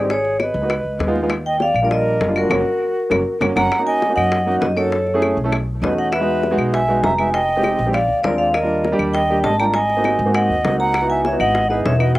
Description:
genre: Afro-Cuban jazz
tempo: 199 BPM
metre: 4/4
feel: straight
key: unclear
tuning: A4 = 440 Hz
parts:
  - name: vibraphone with medium hard mallets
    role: melody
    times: 0.0-12.2 s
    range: Bb4 to Bb5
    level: -20 LUFS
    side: equal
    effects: slapback echo
  - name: breathy bright silver concert flute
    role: second line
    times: 0.0-12.2 s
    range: Gb4 to G5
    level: -23 LUFS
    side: right 2 dB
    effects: slapback echo
  - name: warm grand piano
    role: accompaniment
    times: 0.0-12.2 s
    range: Gb3 to A4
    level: -21 LUFS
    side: right 1 dB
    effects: slapback echo
  - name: upright bass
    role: bass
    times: 0.0-12.2 s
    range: E1 to G#2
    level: -23 LUFS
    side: equal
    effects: none
  - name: bongos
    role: percussion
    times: 0.1-12.2 s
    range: none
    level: -26 LUFS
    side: left 3 dB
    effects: none
  - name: claves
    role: percussion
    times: 0.4-12.2 s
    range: none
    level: -26 LUFS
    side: left 3 dB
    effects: none
room: little or no reverb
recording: recorded outdoors, with no room sound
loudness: -16 LUFS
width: side -17 dB against mid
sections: 0.0-3.7 A section; 3.7-12.2 B section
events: band accent 2.5-3.7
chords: 0.1 Abm; 0.7 Db9; 1.3 Ebmaj7; 2.5 Gb; 3.7 F#69; 4.9 F#m7; 5.5 B7; 6.1 Emaj7; 7.3 Fm7; 7.9 A#7; 8.5 D#maj7; 9.7 G#7; 11.0 C#m11

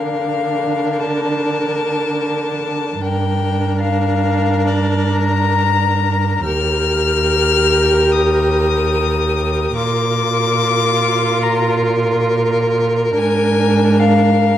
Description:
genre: classical, slow romantic movement for string quartet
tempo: free time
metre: none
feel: none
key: Bb major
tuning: A4 = 438 Hz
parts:
  - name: rich violin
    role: melody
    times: 0.0-14.6 s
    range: D5 to F6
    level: -20 LUFS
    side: left 8 dB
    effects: none
  - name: rich violin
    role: second line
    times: 0.0-14.6 s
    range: Bb4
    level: -20 LUFS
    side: equal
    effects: none
  - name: warm viola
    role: accompaniment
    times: 0.0-14.6 s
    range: D4 to G4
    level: -20 LUFS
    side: right 1 dB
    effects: none
  - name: warm cello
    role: bass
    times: 0.0-14.6 s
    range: Eb2 to D3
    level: -19 LUFS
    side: right 2 dB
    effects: none
room: wet recital hall reverb, RT60 1.5 s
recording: dark, warm production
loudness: -14 LUFS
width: side -11 dB against mid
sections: 0.0-14.6 A section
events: none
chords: 0.0 Bb/D; 3.0 Gm; 6.4 Eb; 9.8 Bb; 13.1 Bb7/Ab

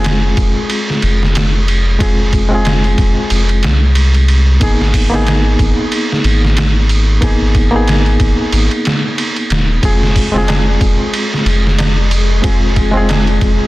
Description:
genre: trip hop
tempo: 92 BPM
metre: 4/4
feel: swing 57% on 16ths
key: F minor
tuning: A4 = 444 Hz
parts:
  - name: barky reed electric piano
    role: accompaniment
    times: 0.0-13.7 s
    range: Ab3 to Ab4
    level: -17 LUFS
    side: left 1 dB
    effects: harmonic tremolo, low-pass filter, tape echo
  - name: soft dub sub bass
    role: bass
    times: 0.0-13.6 s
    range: Eb1 to C2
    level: -13 LUFS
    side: equal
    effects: none
  - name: trip hop sampler-style drum kit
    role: drums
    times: 0.0-13.6 s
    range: hi-hat, kick drum, ride cymbal, snare drum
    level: -15 LUFS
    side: equal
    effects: overdrive, small room ambience
  - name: bowed-like drone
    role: texture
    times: 11.2-13.7 s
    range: Ab3 to Ab4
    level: -25 LUFS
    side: left 1 dB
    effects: built-in reverb
  - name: tabla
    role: percussion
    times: 10.5-13.2 s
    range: none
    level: -28 LUFS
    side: left 2 dB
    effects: none
room: little or no reverb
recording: dense, heavily limited modern master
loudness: -10 LUFS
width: side -18 dB against mid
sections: 0.0-13.7 A section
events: none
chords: 0.0 Fm; 4.6 Abmadd9; 9.8 Fm

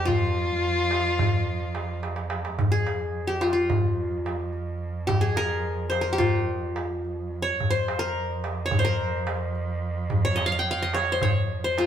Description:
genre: Turkish makam ensemble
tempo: 215 BPM (eighths)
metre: 9/8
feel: straight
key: F makam ussak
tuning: A4 = 440 Hz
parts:
  - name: qanun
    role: melody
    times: 0.0-11.9 s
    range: F4 to G5-30c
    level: -26 LUFS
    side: left 1 dB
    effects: none
  - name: rich violin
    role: second line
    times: 0.0-2.0 s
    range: F4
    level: -27 LUFS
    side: left 3 dB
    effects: none
  - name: dark cello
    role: drone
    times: 0.0-11.9 s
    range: F2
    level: -31 LUFS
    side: right 3 dB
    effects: none
  - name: darbuka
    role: percussion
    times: 0.1-11.9 s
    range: none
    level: -27 LUFS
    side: equal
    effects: none
room: wet stone room reverb, RT60 1.1 s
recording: band playing live in one room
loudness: -23 LUFS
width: side -9 dB against mid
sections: 0.0-2.6 A section; 2.6-11.9 B section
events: drum fill 2.0-2.6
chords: none

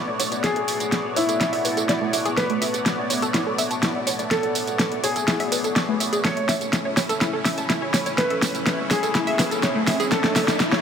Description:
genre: progressive house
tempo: 124 BPM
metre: 4/4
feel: straight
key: unclear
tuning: A4 = 440 Hz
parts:
  - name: lush unison pad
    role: sustained chords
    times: 0.0-10.8 s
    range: A3 to D5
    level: -28 LUFS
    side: left 1 dB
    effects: chorus, phaser
  - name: analog pluck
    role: arpeggios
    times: 0.0-10.8 s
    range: A3 to A5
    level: -27 LUFS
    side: equal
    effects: chorus, vintage 12-bit sampler grit, dub echo
  - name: plucky analog bass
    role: bass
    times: 0.1-10.8 s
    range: A1 to C#2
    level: -41 LUFS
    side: equal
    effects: none
  - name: deep house drum kit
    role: drums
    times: 0.2-10.8 s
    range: hi-hat, snare drum, tambourine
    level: -23 LUFS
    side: equal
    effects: small room ambience
  - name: dark baby grand piano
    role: melody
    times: 0.4-10.6 s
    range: E4 to C#5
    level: -28 LUFS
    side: left 1 dB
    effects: low-pass filter, digital delay
  - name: soft synth bell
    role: second line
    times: 0.4-10.6 s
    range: E4 to C#5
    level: -33 LUFS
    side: right 1 dB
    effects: none
  - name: riser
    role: sound effects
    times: 8.0-10.8 s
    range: none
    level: -30 LUFS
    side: equal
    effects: none
room: moderate huge ambient reverb, RT60 6.3 s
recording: none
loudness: -20 LUFS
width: side -7 dB against mid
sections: 0.0-10.8 A section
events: build-up 0.0-10.8; drum fill 0.0-10.8; filter sweep on synth pluck 0.0-10.8; riser 8.0-10.8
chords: 0.0 Bm7; 6.2 A

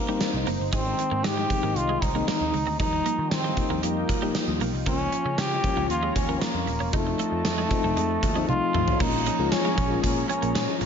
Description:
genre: 1980s-style pop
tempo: 116 BPM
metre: 4/4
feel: straight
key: Bb dorian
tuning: A4 = 440 Hz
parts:
  - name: trombone with metal mute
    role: melody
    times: 0.0-10.8 s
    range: A3 to G4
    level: -28 LUFS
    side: right 1 dB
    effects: digital delay
  - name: FM electric piano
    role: accompaniment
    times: 0.0-10.9 s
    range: Eb3 to F4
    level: -30 LUFS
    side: left 7 dB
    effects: chorus
  - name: phased analog pad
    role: sustained chords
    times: 0.0-10.9 s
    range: Eb4 to Bb5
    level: -35 LUFS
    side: right 1 dB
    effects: phaser, chorus
  - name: twelve-string electric guitar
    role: riff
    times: 0.1-10.8 s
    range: G3 to Eb4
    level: -35 LUFS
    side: right 8 dB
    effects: wide subtle chorus, digital delay
  - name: gated 80s drum kit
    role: drums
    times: 0.2-10.9 s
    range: crash cymbal, hi-hat, kick drum, snare drum, tambourine, toms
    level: -28 LUFS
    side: right 1 dB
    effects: none
  - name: vintage muted picked electric bass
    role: bass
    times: 0.3-10.9 s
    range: Eb1 to Eb3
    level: -30 LUFS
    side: equal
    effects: none
  - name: crunchy overdriven guitar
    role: accompaniment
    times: 9.0-10.9 s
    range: Bb2 to Bb3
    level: -38 LUFS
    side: right 4 dB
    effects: none
room: light reverb, studio ambience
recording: nothing above 7.5 kHz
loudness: -22 LUFS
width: side -7 dB against mid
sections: 0.0-9.0 A section; 9.0-10.9 B section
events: drum fill 8.5-9.0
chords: 0.0 Cm7; 0.7 Ab; 2.8 Ebadd9; 4.9 Bbm/Db; 6.9 F7; 9.0 Bbm7

